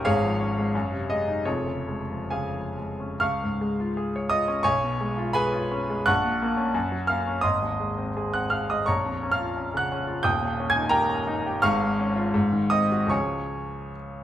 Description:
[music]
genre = classical, romantic character piece for solo piano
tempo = 64-93 BPM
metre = 2/4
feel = rubato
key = Db major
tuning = A4 = 439 Hz
[part]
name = clear grand piano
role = solo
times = 0.0-14.2 s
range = Eb1 to Ab6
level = -23 LUFS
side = equal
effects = none
[sound]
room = moderate large studio reverb, RT60 1.2 s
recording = none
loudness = -23 LUFS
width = side -11 dB against mid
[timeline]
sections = 0.0-3.2 A section; 3.2-14.2 B section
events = none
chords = 0.1 Db/Ab; 0.7 Ab7/Gb; 1.5 Db/F; 3.2 Db; 4.7 Db7/Cb; 6.1 Gb/Bb; 6.7 Gb; 7.4 Ab; 8.9 Bbm; 10.3 Eb7; 11.6 Db/Ab; 12.3 Ab7; 13.1 Db

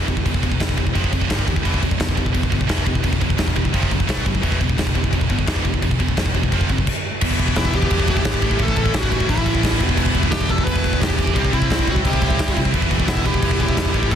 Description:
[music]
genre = heavy metal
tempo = 173 BPM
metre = 4/4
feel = straight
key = E minor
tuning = A4 = 444 Hz
[part]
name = heavy high-gain guitar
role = riff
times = 0.0-14.2 s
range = E2 to E4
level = -26 LUFS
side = left 13 dB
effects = distortion
[part]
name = heavy high-gain guitar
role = riff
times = 0.0-14.2 s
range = E2 to C4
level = -26 LUFS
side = right 12 dB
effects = distortion
[part]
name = overdriven picked electric bass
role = bass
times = 0.0-14.2 s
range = E1 to C3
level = -23 LUFS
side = equal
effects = none
[part]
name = big rock drum kit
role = drums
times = 0.1-14.2 s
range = crash cymbal, kick drum, snare drum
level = -20 LUFS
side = equal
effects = none
[part]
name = crunchy overdriven guitar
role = riff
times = 7.2-14.2 s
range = E2 to C4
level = -27 LUFS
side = equal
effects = none
[part]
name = high-gain lead guitar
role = melody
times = 7.6-14.2 s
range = E4 to B4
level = -25 LUFS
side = right 1 dB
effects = distortion
[part]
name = high-gain lead guitar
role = second line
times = 12.1-14.1 s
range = B3 to E4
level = -30 LUFS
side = right 5 dB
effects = distortion, digital delay
[sound]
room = small room ambience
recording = dense, heavily limited modern master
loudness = -17 LUFS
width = side -9 dB against mid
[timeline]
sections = 0.0-7.2 A section; 7.2-14.2 B section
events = stop 6.9-7.2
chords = 0.0 E5; 0.9 F5; 1.3 G5; 1.6 E5; 3.7 F5; 4.1 B5; 4.4 E5; 6.5 F5; 6.9 N.C.; 7.2 Em; 8.4 A; 9.8 Em; 11.4 C; 12.7 Em

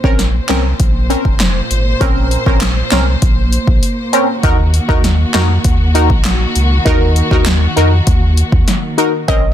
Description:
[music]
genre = dancehall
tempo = 99 BPM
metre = 4/4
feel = straight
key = unclear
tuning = A4 = 440 Hz
[part]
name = synth brass stab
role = accompaniment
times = 0.0-9.4 s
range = C4 to Bb4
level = -16 LUFS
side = left 1 dB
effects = chorus, phaser
[part]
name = warm studio string section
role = sustained chords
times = 0.0-9.5 s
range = Bb2 to C5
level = -21 LUFS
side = equal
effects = sidechain pumping
[part]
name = warm sub bass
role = bass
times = 0.0-9.5 s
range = F1 to F2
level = -14 LUFS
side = equal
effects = none
[part]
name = deep house drum kit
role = drums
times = 0.0-9.4 s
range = handclaps, hi-hat, kick drum, snare drum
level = -14 LUFS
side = equal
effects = overdrive
[part]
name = soft round pluck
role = melody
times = 9.3-9.5 s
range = Eb5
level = -18 LUFS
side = right 4 dB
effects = chorus, ping-pong delay
[sound]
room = little or no reverb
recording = dense, heavily limited modern master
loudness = -10 LUFS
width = side -10 dB against mid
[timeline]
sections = 0.0-9.3 A section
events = none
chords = 0.0 Bbmadd9; 4.4 Ebm

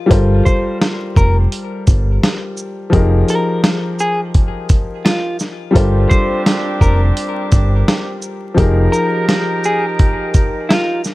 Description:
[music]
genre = hip hop, boom-bap hip-hop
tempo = 85 BPM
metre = 4/4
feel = swing 62% on 16ths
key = G phrygian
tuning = A4 = 439 Hz
[part]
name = dark upright piano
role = accompaniment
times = 0.0-11.1 s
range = F3 to C5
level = -19 LUFS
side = left 2 dB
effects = high-pass filter, low-pass filter
[part]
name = deep dub fingered electric bass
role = bass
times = 0.1-8.9 s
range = F1 to G1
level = -13 LUFS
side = equal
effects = none
[part]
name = dusty soul sampler-style drum kit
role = drums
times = 0.1-11.1 s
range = hi-hat, kick drum, shaker, snare drum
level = -14 LUFS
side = equal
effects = none
[part]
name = clean electric guitar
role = melody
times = 0.5-11.0 s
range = F4 to C5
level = -21 LUFS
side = equal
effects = high-pass filter, low-pass filter, ping-pong delay
[part]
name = clear horn section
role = stabs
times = 5.8-11.0 s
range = C4 to Bb4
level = -22 LUFS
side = right 2 dB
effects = high-pass filter, low-pass filter, ping-pong delay
[sound]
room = digital ambience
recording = vinyl crackle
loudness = -12 LUFS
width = side -19 dB against mid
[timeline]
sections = 0.0-11.1 A section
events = none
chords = 0.1 Gm11; 2.9 Fm11; 5.8 Gm11; 8.6 Fm11

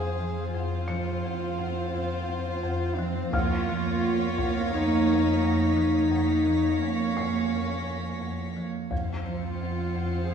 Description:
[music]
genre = cinematic, suspense film score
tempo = 86 BPM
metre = 4/4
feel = straight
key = unclear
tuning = A4 = 439 Hz
[part]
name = dark chamber violin section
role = melody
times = 0.0-10.3 s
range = F5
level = -40 LUFS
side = left 5 dB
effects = none
[part]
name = warm chamber violin section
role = second line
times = 0.0-10.3 s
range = C5 to Db5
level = -36 LUFS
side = left 1 dB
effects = none
[part]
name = warm chamber viola section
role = accompaniment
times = 0.0-10.3 s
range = Bb3 to C4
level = -32 LUFS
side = right 6 dB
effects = none
[part]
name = folk marimba with hard mallets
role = riff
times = 0.0-10.3 s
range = F2 to F3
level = -32 LUFS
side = left 1 dB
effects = none
[part]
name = dark chamber double bass section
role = bass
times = 0.0-10.3 s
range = F2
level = -33 LUFS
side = right 2 dB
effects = none
[part]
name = warm studio cello section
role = bass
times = 0.0-10.3 s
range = C4 to Ab4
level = -28 LUFS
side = left 2 dB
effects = none
[part]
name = felt-muted upright piano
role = texture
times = 0.0-10.3 s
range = C5 to Db7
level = -40 LUFS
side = equal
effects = none
[part]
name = taiko ensemble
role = drums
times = 3.3-4.7, 8.9-10.3 s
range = none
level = -35 LUFS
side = left 1 dB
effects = none
[part]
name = warm chamber violin section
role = texture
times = 3.3-10.3 s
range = Bb6 to Db7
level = -41 LUFS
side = left 1 dB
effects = none
[sound]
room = wet scoring stage reverb, RT60 2.1 s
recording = heard from further back in the room, studio reverb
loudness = -24 LUFS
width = side -7 dB against mid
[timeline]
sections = 0.0-10.3 A section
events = none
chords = 0.0 Fm; 3.3 Bbm/F; 8.9 F5

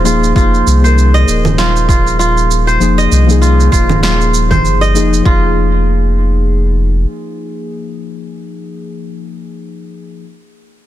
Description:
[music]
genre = organic downtempo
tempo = 98 BPM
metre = 4/4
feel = swing 56% on 16ths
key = F minor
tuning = A4 = 437 Hz
[part]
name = muted felt-like synth keys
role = accompaniment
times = 0.0-10.2 s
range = F3 to Bb4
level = -18 LUFS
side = left 4 dB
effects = chorus, vintage 12-bit sampler grit, sidechain pumping, tape echo
[part]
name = kora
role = arpeggios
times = 0.0-6.8 s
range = F4 to Eb5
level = -16 LUFS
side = right 2 dB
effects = tape echo
[part]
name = warm sub bass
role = bass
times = 0.0-7.1 s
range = Eb1 to C2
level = -12 LUFS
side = equal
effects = none
[part]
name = drifting glass-harmonics texture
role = texture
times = 0.0-5.3 s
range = C5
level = -27 LUFS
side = right 10 dB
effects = none
[part]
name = electronic shaker, congas and snare drum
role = drums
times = 0.1-5.2 s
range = none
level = -19 LUFS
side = right 3 dB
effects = none
[part]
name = electronic kick drum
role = drums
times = 0.4-5.4 s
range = none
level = -12 LUFS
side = equal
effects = none
[sound]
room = little or no reverb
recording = dense, heavily limited modern master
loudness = -9 LUFS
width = side -13 dB against mid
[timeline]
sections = 0.0-5.3 A section; 5.3-7.7 B section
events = none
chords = 0.0 Fm7

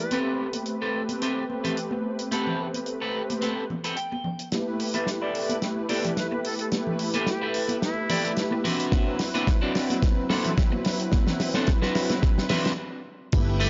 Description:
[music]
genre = nu-disco, nu disco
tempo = 109 BPM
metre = 4/4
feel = swing 54% on 16ths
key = G major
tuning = A4 = 441 Hz
[part]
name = jazz flute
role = melody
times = 0.0-0.2, 6.2-8.4 s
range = E4 to B4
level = -37 LUFS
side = equal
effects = low-pass filter, analog delay
[part]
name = mellow synth brass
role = accompaniment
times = 0.0-13.7 s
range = F#3 to B4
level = -32 LUFS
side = equal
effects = chorus, sidechain pumping, analog delay
[part]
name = electric guitar at the edge of break-up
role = riff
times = 0.0-13.7 s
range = C4 to G5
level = -31 LUFS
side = equal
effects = lush chorus, low-pass filter, analog delay
[part]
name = damped 70s drum kit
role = drums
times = 0.1-13.7 s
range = crash cymbal, hi-hat, snare drum, tambourine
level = -33 LUFS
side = equal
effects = studio reverb
[part]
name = congas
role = percussion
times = 0.1-13.4 s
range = none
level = -36 LUFS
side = equal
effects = none
[part]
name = electronic kick drum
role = drums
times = 8.9-13.4 s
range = none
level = -25 LUFS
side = equal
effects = studio reverb
[part]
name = fat analog bass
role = bass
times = 13.3-13.7 s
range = G1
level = -27 LUFS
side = equal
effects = sidechain pumping
[sound]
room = light reverb, small room ambience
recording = dry, gritty hardware recording, nothing above 7.5 kHz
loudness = -26 LUFS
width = mono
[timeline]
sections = 0.0-4.5 A section; 4.5-13.3 B section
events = filter sweep on clean electric guitar 0.0-4.5; clean electric guitar fill 3.7-4.5; build-up 4.5-13.3; drum fill 4.5-12.8; stop 12.8-13.3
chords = 0.1 Am9; 4.5 G69; 8.7 D13; 13.1 N.C.

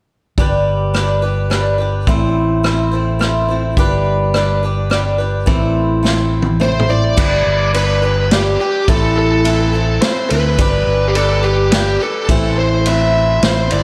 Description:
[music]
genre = folk rock and heartland rock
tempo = 106 BPM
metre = 3/4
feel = straight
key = unclear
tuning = A4 = 440 Hz
[part]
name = picked swing-style acoustic guitar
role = accompaniment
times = 0.4-13.8 s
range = A2 to C5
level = -20 LUFS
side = equal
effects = slapback echo
[part]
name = fingered electric bass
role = bass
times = 0.4-13.8 s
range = G1 to D2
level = -20 LUFS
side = equal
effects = none
[part]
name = vintage drum kit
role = drums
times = 0.4-13.8 s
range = crash cymbal, kick drum, ride cymbal, rim click, snare drum, toms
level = -20 LUFS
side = equal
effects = none
[part]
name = bluesy overdriven lead guitar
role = melody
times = 6.6-13.8 s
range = G4 to E5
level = -20 LUFS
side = equal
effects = distortion, slapback echo
[sound]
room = moderate concert hall reverb, RT60 1.8 s, studio ambience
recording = big arena sound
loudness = -15 LUFS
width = mono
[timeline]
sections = 0.4-7.2 A section; 7.2-13.8 B section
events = drum fill 6.0-7.2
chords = 0.4 G; 2.1 Am; 3.8 G; 5.5 Am; 7.2 G; 8.9 Am; 10.6 G; 12.3 Am

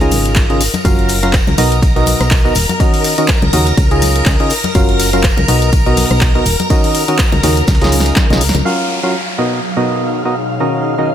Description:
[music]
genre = piano house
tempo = 123 BPM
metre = 4/4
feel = swing 56% on 16ths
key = F# major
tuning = A4 = 439 Hz
[part]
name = string machine, violins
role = sustained chords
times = 0.0-11.1 s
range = A#4 to E#6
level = -20 LUFS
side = equal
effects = ensemble chorus, sidechain pumping
[part]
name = percussive organ stab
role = riff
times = 0.0-11.1 s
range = B2 to E#5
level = -16 LUFS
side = equal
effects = chorus, sidechain pumping, tape echo
[part]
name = solid FM bass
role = bass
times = 0.0-8.6 s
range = D#1 to D#2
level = -16 LUFS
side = equal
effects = tube saturation, sidechain pumping
[part]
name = house drum kit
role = drums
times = 0.0-11.1 s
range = crash cymbal, handclaps, hi-hat, rim click, shaker, snare drum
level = -19 LUFS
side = left 1 dB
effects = low-pass filter on hats, low-pass filter on snare, low-pass filter on cymbals, low-pass filter on perc
[part]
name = tambourine and congas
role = percussion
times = 0.0-8.6 s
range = none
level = -24 LUFS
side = left 5 dB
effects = none
[part]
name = breakbeat sampler-style drum kit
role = drums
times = 0.1-8.2 s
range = hi-hat, ride cymbal, snare drum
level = -28 LUFS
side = right 4 dB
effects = none
[part]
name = electronic kick drum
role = drums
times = 0.4-8.3 s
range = none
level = -14 LUFS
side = equal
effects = none
[part]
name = downlifter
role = sound effects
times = 8.7-11.1 s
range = none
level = -23 LUFS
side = equal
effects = none
[part]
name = ethereal airy pad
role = texture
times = 9.0-11.1 s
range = D#4 to E#5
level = -21 LUFS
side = equal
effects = ensemble chorus, built-in reverb, sidechain pumping
[sound]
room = light reverb, digital ambience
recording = none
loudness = -10 LUFS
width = side -10 dB against mid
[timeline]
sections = 0.0-8.7 A section; 8.7-11.1 B section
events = drum fill 7.7-8.7; band accent 8.5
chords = 0.0 C#add9; 0.8 F#maj7; 1.6 Bmaj7; 2.6 D#m7; 3.8 C#add9; 4.8 F#maj7; 5.5 Bmaj7; 6.5 D#m7; 7.7 C#add9; 8.7 F#maj7; 9.4 Bmaj7; 10.4 D#m7

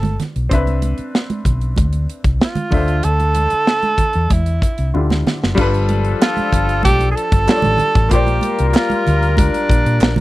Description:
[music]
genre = lush 1970s-style soul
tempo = 95 BPM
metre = 4/4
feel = straight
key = unclear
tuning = A4 = 440 Hz
[part]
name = breathy tenor saxophone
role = melody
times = 0.0-10.2 s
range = D4 to A4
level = -18 LUFS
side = right 2 dB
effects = none
[part]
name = clear baby grand piano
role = accompaniment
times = 0.0-10.2 s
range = D3 to E5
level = -24 LUFS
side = left 2 dB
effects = none
[part]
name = hollow-body short-scale fingered electric bass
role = bass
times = 0.0-10.2 s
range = F#1 to Bb2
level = -17 LUFS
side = equal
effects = none
[part]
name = modern studio drum kit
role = drums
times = 0.0-10.2 s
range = crash cymbal, hi-hat, kick drum, snare drum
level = -17 LUFS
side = equal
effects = none
[part]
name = congas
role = percussion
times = 0.0-10.2 s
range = none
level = -24 LUFS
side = right 4 dB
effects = none
[part]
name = clear horn section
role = stabs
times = 5.6-10.2 s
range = F3 to Bb4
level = -22 LUFS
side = left 6 dB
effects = none
[part]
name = group handclap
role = percussion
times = 6.2-10.2 s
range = none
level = -29 LUFS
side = right 9 dB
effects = none
[sound]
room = little or no reverb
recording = dry, close 1970s-style studio recording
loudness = -14 LUFS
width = side -17 dB against mid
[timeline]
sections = 0.0-5.6 A section; 5.6-10.2 B section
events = drum fill 4.9-5.6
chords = 0.0 G9; 0.5 Cmaj7; 2.7 Dm9; 5.6 G9; 8.1 Bb69

